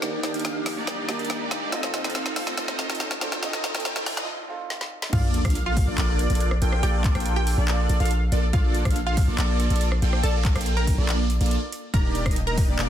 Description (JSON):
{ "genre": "future bass", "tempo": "141 BPM", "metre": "4/4", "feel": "half-time", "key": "Bb major", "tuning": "A4 = 444 Hz", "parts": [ { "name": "felt-muted upright piano", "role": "accompaniment", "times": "0.0-5.1 s", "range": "Eb3 to D6", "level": "-36 LUFS", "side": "right 2 dB", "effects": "sidechain pumping, digital delay" }, { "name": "airy breathy pad", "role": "sustained chords", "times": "0.0-4.3 s", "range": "Eb3 to F5", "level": "-42 LUFS", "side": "equal", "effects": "chorus, sidechain pumping" }, { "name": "supersaw chords", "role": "riff", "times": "0.0-12.9 s", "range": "Bb3 to G5", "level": "-29 LUFS", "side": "right 1 dB", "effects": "phaser, lush chorus, cassette tape, sidechain pumping, digital delay" }, { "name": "trap drum kit", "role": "drums", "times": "0.0-12.9 s", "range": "crash cymbal, handclaps, hi-hat, rim click, snare drum", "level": "-30 LUFS", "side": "equal", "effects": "studio reverb" }, { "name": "riser and sub drop", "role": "sound effects", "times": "1.0-6.8 s", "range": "none", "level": "-35 LUFS", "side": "equal", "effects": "none" }, { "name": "wide unison pluck", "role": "melody", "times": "5.1-12.8 s", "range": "F4 to Bb5", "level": "-32 LUFS", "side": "right 2 dB", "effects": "sidechain pumping, digital delay" }, { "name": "airy dreamy lead", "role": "arpeggios", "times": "5.1-12.9 s", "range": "D5 to G5", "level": "-34 LUFS", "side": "equal", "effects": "chorus, cassette tape, sidechain pumping" }, { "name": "long sustained 808-style bass", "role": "bass", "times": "5.1-12.9 s", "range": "Eb1 to Bb1", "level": "-23 LUFS", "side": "equal", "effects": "sidechain pumping" }, { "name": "electronic kick drum", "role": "drums", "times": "5.1-12.7 s", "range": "none", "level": "-23 LUFS", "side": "equal", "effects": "studio reverb" } ], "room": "light reverb", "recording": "dense, heavily limited modern master, high-pass filter", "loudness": "-21 LUFS", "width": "side -10 dB against mid", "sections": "0.0-5.1 A section; 5.1-12.9 B section", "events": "build-up 0.0-5.1; drum fill 0.0-4.3, 4.7-5.1; filter sweep on supersaw synth 0.0-5.1; riser 1.0-4.3; break 4.3-5.1; drop 5.1-12.9; impact 5.1-6.8", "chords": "0.0 Ebmaj7; 1.7 F7; 5.1 Bbmaj7; 11.9 Ebmaj7" }